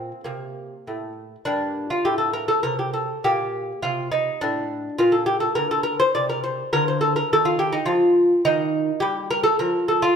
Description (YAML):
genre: classical, baroque-style dance for lute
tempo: 103 BPM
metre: 3/4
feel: uneven beats, rubato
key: G minor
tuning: A4 = 440 Hz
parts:
  - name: lute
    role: solo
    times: 0.0-10.2 s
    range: G2 to D5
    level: -20 LUFS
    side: equal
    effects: none
room: moderate recital hall reverb, RT60 1.5 s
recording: none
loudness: -19 LUFS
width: side -7 dB against mid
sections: 0.0-1.4 A section; 1.4-10.2 A section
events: none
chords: 0.0 Bbsus2; 1.4 Gm; 3.2 Gm/Bb; 5.0 Bb; 6.7 Bb/D; 8.4 Eb